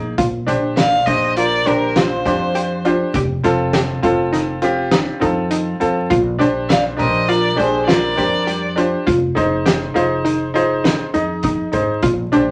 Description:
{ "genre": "progressive instrumental, band music in an uneven meter", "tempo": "101 BPM", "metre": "5/4", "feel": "straight", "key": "Bb mixolydian", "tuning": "A4 = 444 Hz", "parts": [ { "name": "bright baby grand piano", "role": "accompaniment", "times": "0.0-12.5 s", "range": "Bb3 to Eb5", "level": "-22 LUFS", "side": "equal", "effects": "none" }, { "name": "upright bass", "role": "bass", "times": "0.0-12.5 s", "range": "F1 to F2", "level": "-27 LUFS", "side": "equal", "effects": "none" }, { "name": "analog pluck", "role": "arpeggios", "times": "0.2-12.5 s", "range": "D4 to G4", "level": "-22 LUFS", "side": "equal", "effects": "chorus" }, { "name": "oversized low-tuned drum kit", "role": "drums", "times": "0.2-12.5 s", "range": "hi-hat, kick drum, snare drum", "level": "-23 LUFS", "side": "equal", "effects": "none" }, { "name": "rich violin", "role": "melody", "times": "0.8-8.7 s", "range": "Bb4 to F5", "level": "-22 LUFS", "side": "equal", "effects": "none" }, { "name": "breathy flugelhorn", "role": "second line", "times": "0.8-8.7 s", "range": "F4 to D5", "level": "-26 LUFS", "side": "equal", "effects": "none" } ], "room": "wet small room reverb, RT60 0.5 s", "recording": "vinyl crackle", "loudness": "-17 LUFS", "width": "mono", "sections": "0.2-12.5 A section", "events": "none", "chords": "0.2 Bb; 3.1 F7; 6.1 Bb; 9.1 Fm7", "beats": "| 0.18 0.78 1.37 1.96 2.55 | 3.14 3.73 4.33 4.92 5.51 | 6.10 6.70 7.29 7.88 8.47 | 9.07 9.66 10.25 10.84 11.44 | 12.03" }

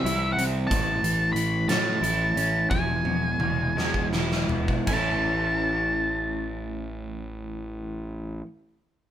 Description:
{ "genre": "quiet-loud alternative rock", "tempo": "52-62 BPM (dotted quarters)", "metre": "6/8", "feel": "straight", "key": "A major", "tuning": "A4 = 440 Hz", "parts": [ { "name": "octave-fuzz lead guitar", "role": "melody", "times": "0.0-8.4 s", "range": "E5 to B5", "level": "-27 LUFS", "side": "equal", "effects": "distortion" }, { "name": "electric guitar through a small old amp", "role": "arpeggios", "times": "0.0-8.5 s", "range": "E2 to E4", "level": "-30 LUFS", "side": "equal", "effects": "harmonic tremolo" }, { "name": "fuzz picked electric bass", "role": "bass", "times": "0.0-8.4 s", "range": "E1 to A2", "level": "-30 LUFS", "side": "equal", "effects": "overdrive" }, { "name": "big rock drum kit", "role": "drums", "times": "0.1-5.0 s", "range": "crash cymbal, hi-hat, kick drum, snare drum, toms", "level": "-29 LUFS", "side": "equal", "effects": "none" } ], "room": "light reverb", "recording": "band playing live in one room", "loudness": "-23 LUFS", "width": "side -10 dB against mid", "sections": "0.0-4.9 A section; 4.9-9.1 B section", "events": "slowing down 0.7-4.9; drum fill 2.7-4.9", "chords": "0.0 C; 0.7 A; 2.7 E; 4.9 A", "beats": "| 0.71 1.69 | 2.70 3.75 | 4.86 6.01 | 7.16 8.31" }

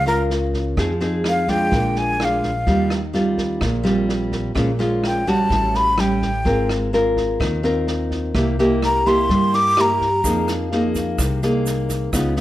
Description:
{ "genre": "bossa nova", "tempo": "127 BPM", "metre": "4/4", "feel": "straight", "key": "unclear", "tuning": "A4 = 440 Hz", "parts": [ { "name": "breathy jazz flute", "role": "melody", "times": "0.0-10.5 s", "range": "Bb4 to D6", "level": "-20 LUFS", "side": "left 1 dB", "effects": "none" }, { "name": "nylon-string guitar", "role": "accompaniment", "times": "0.0-12.4 s", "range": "A2 to Bb4", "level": "-20 LUFS", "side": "equal", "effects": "none" }, { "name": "upright bass", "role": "bass", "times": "0.0-12.4 s", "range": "Ab1 to G2", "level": "-24 LUFS", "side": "equal", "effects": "none" }, { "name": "open jazz drum kit", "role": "drums", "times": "0.1-12.4 s", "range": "kick drum, rim click, snare drum", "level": "-27 LUFS", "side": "right 1 dB", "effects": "none" }, { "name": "tube shaker", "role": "percussion", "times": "10.2-12.4 s", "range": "none", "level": "-32 LUFS", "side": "right 6 dB", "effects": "none" } ], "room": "light reverb", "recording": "none", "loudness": "-17 LUFS", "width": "side -14 dB against mid", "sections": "0.0-12.4 A section", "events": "flute solo 0.0-12.4", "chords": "0.0 Gbmaj7 (rootless); 0.8 Fm7; 1.7 Bb7; 2.7 Eb69; 4.6 Bbm7; 5.5 A6; 6.5 Ab69; 8.3 C7; 10.2 Fm7", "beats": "0.30 | 0.78 1.25 1.72 2.20 | 2.67 3.14 3.62 4.09 | 4.56 5.04 5.51 5.98 | 6.46 6.93 7.40 7.88 | 8.35 8.82 9.30 9.77 | 10.24 10.72 11.19 11.66 | 12.14" }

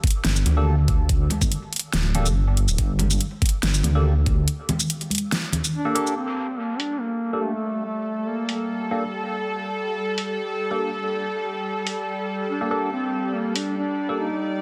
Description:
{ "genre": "deep dubstep", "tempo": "142 BPM", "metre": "4/4", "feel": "half-time", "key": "G minor", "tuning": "A4 = 436 Hz", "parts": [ { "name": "dubstep drum kit", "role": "drums", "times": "0.0-13.6 s", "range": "hi-hat, shaker, snare drum", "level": "-28 LUFS", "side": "equal", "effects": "overdrive, low-pass filter on hats, studio reverb, low-pass filter on perc, low-pass filter on snare" }, { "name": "electronic kick drum", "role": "drums", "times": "0.0-4.4 s", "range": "none", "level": "-24 LUFS", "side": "equal", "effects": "overdrive, studio reverb" }, { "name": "dark detuned saw bass", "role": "bass", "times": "0.2-4.5 s", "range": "D1 to D2", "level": "-23 LUFS", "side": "equal", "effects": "none" }, { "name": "congas", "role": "percussion", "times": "0.5-5.6 s", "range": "none", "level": "-30 LUFS", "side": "equal", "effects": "dub echo" }, { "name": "barky tine electric piano", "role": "stabs", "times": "0.6-14.3 s", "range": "Bb3 to A4", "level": "-32 LUFS", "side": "equal", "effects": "phaser, low-pass filter, dub echo" }, { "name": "mellow duduk", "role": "melody", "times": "5.7-9.1, 12.5-14.6 s", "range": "A3 to Eb4", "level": "-29 LUFS", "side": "equal", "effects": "dub echo" }, { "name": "bowed-like drone", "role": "sustained chords", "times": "7.3-14.6 s", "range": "G3 to D5", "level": "-30 LUFS", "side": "equal", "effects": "built-in reverb" } ], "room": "moderate echo chamber reverb, RT60 1.7 s", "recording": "dense, heavily limited modern master", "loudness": "-24 LUFS", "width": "mono", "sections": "0.0-6.2 A section; 6.2-14.6 B section", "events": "break 4.5-6.2", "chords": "0.0 G5; 6.2 Gmadd9", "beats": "0.25 0.67 | 1.09 1.51 1.94 2.36 | 2.78 3.21 3.63 4.05 | 4.47 4.89 5.32 5.74 | 6.16 6.59 7.01 7.43 | 7.85 8.28 8.70 9.12 | 9.54 9.97 10.39 10.81 | 11.23 11.66 12.08 12.50 | 12.92 13.35 13.77 14.19 | 14.61" }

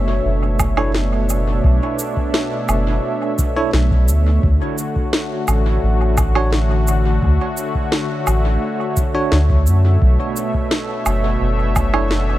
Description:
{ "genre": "ambient dub", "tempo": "86 BPM", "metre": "4/4", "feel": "straight", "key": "B minor", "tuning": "A4 = 439 Hz", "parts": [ { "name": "warm analog pad", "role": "sustained chords", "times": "0.0-12.4 s", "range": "B2 to E5", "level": "-21 LUFS", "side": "equal", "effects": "chorus, tremolo" }, { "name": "soft dub sub bass", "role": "bass", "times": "0.0-12.4 s", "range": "F#1 to F#2", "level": "-16 LUFS", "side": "equal", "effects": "tube saturation" }, { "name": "electronic cabasa, woodblock and snare drum", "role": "drums", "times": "0.6-12.2 s", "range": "none", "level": "-23 LUFS", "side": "equal", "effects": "overdrive, dub echo" }, { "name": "electronic kick drum", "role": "drums", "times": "0.6-11.9 s", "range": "none", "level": "-19 LUFS", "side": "equal", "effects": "none" }, { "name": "barky tine electric piano", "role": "stabs", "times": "0.8-12.1 s", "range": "D4 to C#5", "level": "-25 LUFS", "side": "right 3 dB", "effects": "fast stereo tremolo, dub echo" } ], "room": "little or no reverb", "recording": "none", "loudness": "-15 LUFS", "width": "side -15 dB against mid", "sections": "0.0-12.4 A section", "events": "none", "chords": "0.0 Bm11; 4.4 Dmaj7; 10.0 Bm11", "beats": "0.25 0.95 | 1.64 2.34 3.04 3.74 | 4.43 5.13 5.83 6.53 | 7.22 7.92 8.62 9.32 | 10.02 10.71 11.41 12.11" }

